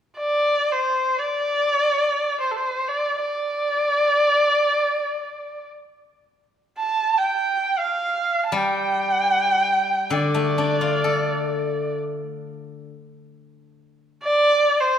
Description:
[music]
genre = chinese traditional, Chinese chamber ensemble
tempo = free time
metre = none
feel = none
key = D yu mode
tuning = A4 = 440 Hz
[part]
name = dark erhu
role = melody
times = 0.2-15.0 s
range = A4 to A5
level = -20 LUFS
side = right 1 dB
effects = none
[part]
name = steel-string zither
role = accompaniment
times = 8.5-12.9 s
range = D3 to A4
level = -24 LUFS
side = left 3 dB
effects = none
[sound]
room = moderate concert hall reverb, RT60 1.9 s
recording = minimal, uncompressed stereo recording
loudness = -19 LUFS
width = side -9 dB against mid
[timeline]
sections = 0.0-14.2 A section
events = none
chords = none

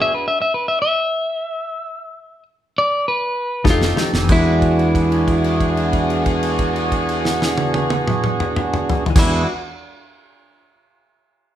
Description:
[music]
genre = straight-eighth soul blues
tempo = 91-114 BPM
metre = 4/4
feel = straight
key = E mixolydian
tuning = A4 = 435 Hz
[part]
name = electric guitar at the edge of break-up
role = melody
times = 0.0-9.5 s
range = E4 to E5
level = -20 LUFS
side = equal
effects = none
[part]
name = percussive tonewheel organ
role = accompaniment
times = 0.0-0.1, 3.6-9.4 s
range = B3 to A4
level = -22 LUFS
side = right 4 dB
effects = slow rotary speaker
[part]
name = warm chamber string section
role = sustained chords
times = 0.0-0.1, 3.6-9.4 s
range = D4 to A4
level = -27 LUFS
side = left 1 dB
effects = none
[part]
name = direct-recorded clean electric guitar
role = stabs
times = 3.6-9.5 s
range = E3 to G4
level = -25 LUFS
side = left 5 dB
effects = none
[part]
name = fretless electric bass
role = bass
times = 3.6-9.4 s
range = F1 to E2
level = -22 LUFS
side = equal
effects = none
[part]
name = damped 70s drum kit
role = drums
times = 3.6-9.3 s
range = crash cymbal, kick drum, snare drum, toms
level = -20 LUFS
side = equal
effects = none
[sound]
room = moderate large studio reverb, RT60 0.8 s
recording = band playing live in one room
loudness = -16 LUFS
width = side -11 dB against mid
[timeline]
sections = 0.0-4.3 A section; 4.3-9.6 B section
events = slowing down 0.0-4.3; stop 0.0-3.7; drum fill 3.7-4.3; held note 4.3-9.2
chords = 0.0 E9; 3.7 F9; 4.3 E9

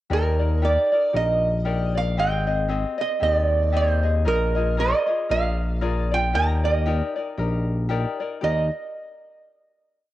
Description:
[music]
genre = Hawaiian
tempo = 115 BPM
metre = 4/4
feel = swing 58% on 8ths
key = Eb major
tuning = A4 = 440 Hz
[part]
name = lap resonator guitar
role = melody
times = 0.1-8.7 s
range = Bb4 to Bb5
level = -23 LUFS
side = right 4 dB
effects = cassette tape
[part]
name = tenor ukulele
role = accompaniment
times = 0.1-8.7 s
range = C4 to Eb5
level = -28 LUFS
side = left 6 dB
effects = cassette tape
[part]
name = smooth synth bass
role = bass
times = 0.1-8.7 s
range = Ab1 to Eb2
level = -23 LUFS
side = left 1 dB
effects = none
[sound]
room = moderate spring reverb, RT60 1.6 s, small room ambience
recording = home recording on cassette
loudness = -20 LUFS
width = side -14 dB against mid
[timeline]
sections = 0.1-8.4 A section; 8.4-10.1 final chord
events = none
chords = 0.1 Ebmaj7; 2.2 Abmaj7; 4.3 Bb7sus4; 5.3 Bb7; 6.3 Ebmaj7

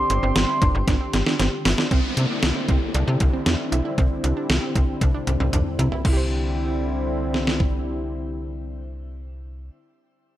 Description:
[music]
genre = synth-pop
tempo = 116 BPM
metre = 4/4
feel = straight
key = C major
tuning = A4 = 440 Hz
[part]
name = mellow horn-like synth lead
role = melody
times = 0.0-1.4 s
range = C6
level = -26 LUFS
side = right 1 dB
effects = chorus, analog delay, shimmer reverb
[part]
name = warm analog pad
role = sustained chords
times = 0.0-9.7 s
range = D3 to G4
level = -28 LUFS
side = left 1 dB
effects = wide subtle chorus, shimmer reverb
[part]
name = wide unison pluck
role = arpeggios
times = 0.1-9.8 s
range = C4 to C5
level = -31 LUFS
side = right 5 dB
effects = analog delay, shimmer reverb
[part]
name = slap-like FM bass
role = bass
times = 0.1-9.7 s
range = G1 to C3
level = -24 LUFS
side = equal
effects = none
[part]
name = detuned 8-bit digital drum machine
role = drums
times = 0.1-7.7 s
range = crash cymbal, hi-hat, kick drum, snare drum, toms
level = -22 LUFS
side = equal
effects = none
[part]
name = downlifter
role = sound effects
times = 1.9-6.0 s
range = none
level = -31 LUFS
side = left 1 dB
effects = none
[sound]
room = light reverb, digital ambience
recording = none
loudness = -20 LUFS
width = side -13 dB against mid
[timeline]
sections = 0.0-1.9 A section; 1.9-6.0 B section; 6.0-10.2 C section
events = drum fill 0.9-1.9, 5.0-6.0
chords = 0.0 Gsus4; 1.9 Cadd9

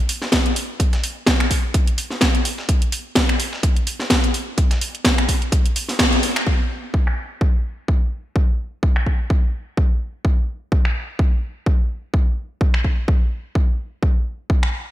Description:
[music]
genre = house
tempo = 127 BPM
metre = 4/4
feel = swing 56% on 16ths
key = none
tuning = none
[part]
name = dusty soul sampler-style drum kit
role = drums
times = 0.1-6.5 s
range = hi-hat, snare drum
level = -29 LUFS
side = left 1 dB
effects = high-pass filter on snare, sidechain pumping on hats, high-pass filter on hats, gated reverb
[part]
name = house drum kit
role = drums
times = 0.1-14.7 s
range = crash cymbal, finger snaps, hi-hat, snare drum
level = -21 LUFS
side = equal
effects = overdrive, low-pass filter on hats, low-pass filter on snare, low-pass filter on cymbals, low-pass filter on room, gated reverb
[part]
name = electronic kick drum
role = drums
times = 0.3-14.6 s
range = none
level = -18 LUFS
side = equal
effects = overdrive
[sound]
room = light reverb, digital ambience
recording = bright 1980s-style digital production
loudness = -17 LUFS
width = side -14 dB against mid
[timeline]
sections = 0.0-6.5 A section; 6.5-14.9 B section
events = band accent 6.0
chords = none

